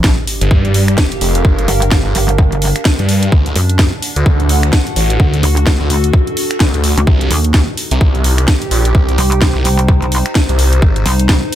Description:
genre	bass house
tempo	128 BPM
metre	4/4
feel	swing 59% on 16ths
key	unclear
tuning	A4 = 436 Hz
part	pulsing pluck wobble bass	bass	0.0-11.4 s	G1 to F#2	-14 LUFS	equal	chorus, tube saturation, sidechain pumping
part	electronic kick drum	drums	0.0-11.4 s	none	-14 LUFS	equal	none
part	garage drum kit	drums	0.0-11.6 s	finger snaps, hi-hat, snare drum	-18 LUFS	equal	none
part	sub drop	sound effects	0.0-1.4 s	none	-25 LUFS	equal	none
part	warbly tape-like pad	texture	0.3-11.6 s	D4 to Ab5	-21 LUFS	right 1 dB	chorus, built-in reverb, phaser, sidechain pumping
part	phased detuned saw bass	bass	0.4-11.0 s	F1 to G2	-13 LUFS	equal	phaser, tube saturation, sidechain pumping
room	little or no reverb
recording	none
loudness	-10 LUFS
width	side -12 dB against mid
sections	0.0-11.6 A section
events	impact 0.0-1.4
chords	0.0 Gm7; 3.3 D; 7.1 Cm; 10.8 Ab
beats	0.04 0.51 0.98 | 1.45 1.92 2.38 2.85 | 3.32 3.79 4.26 4.73 | 5.20 5.67 6.13 6.60 | 7.07 7.54 8.01 8.48 | 8.95 9.42 9.88 10.35 | 10.82 11.29

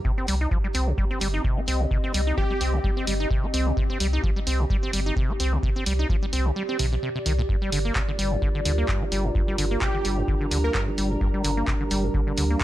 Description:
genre	acid house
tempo	129 BPM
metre	4/4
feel	swing 55% on 16ths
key	unclear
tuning	A4 = 438 Hz
part	deep acid bass	riff	0.0-12.6 s	G2 to Eb4	-29 LUFS	equal	tube saturation, analog delay
part	electronic kick drum	drums	0.0-12.6 s	none	-26 LUFS	equal	small room ambience
part	warbly tape-like pad	texture	0.0-12.6 s	C4 to Bb5	-32 LUFS	right 1 dB	chorus, built-in reverb, phaser, sidechain pumping
part	warm sub bass	bass	0.3-12.6 s	G1 to D2	-25 LUFS	equal	sidechain pumping
part	punchy analog drum machine	drums	0.3-12.6 s	handclaps, hi-hat	-30 LUFS	equal	small room ambience
part	plucky unison lead	melody	2.4-3.0, 9.8-10.8 s	G4 to Bb4	-32 LUFS	equal	analog delay
part	dark analog pad	sustained chords	8.2-12.6 s	G3 to Bb4	-31 LUFS	right 1 dB	chorus, sidechain pumping
room	light reverb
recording	lossy compression artefacts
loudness	-22 LUFS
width	side -14 dB against mid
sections	0.0-12.6 A section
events	kick drops out 6.6-7.5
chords	0.0 Cm7; 7.5 Gm7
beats	| 0.05 0.52 0.98 1.45 | 1.91 2.38 2.84 3.31 | 3.77 4.24 4.70 5.17 | 5.63 6.10 6.56 7.03 | 7.49 7.96 8.42 8.89 | 9.35 9.82 10.28 10.75 | 11.21 11.68 12.14 12.61

